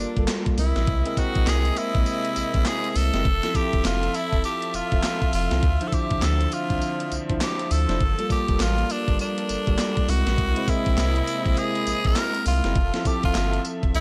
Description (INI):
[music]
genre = R&B, new jack swing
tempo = 101 BPM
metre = 4/4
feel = swing 62% on 16ths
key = unclear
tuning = A4 = 442 Hz
[part]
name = raspy tenor saxophone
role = melody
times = 0.0-14.0 s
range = D4 to Bb4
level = -30 LUFS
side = equal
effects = none
[part]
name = bell-like tine electric piano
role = accompaniment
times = 0.0-14.0 s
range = F3 to E5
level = -32 LUFS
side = equal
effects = lush chorus
[part]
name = warm studio string section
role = sustained chords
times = 0.0-14.0 s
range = C3 to E5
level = -35 LUFS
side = equal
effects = none
[part]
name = round analog bass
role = bass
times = 0.0-14.0 s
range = E1 to D2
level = -27 LUFS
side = equal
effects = none
[part]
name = gated 80s digital drum machine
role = drums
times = 0.2-14.0 s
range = handclaps, hi-hat, kick drum, snare drum, tambourine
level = -28 LUFS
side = equal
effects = gated reverb, gated reverb snare, vintage 12-bit sampler grit
[sound]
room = digital ambience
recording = none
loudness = -23 LUFS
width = mono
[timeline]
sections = 0.0-14.0 A section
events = none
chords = 0.0 Gm9; 0.6 C7alt; 3.3 Fmaj7; 5.6 Dm9; 8.0 Gm9; 10.1 C7alt; 12.8 Fmaj7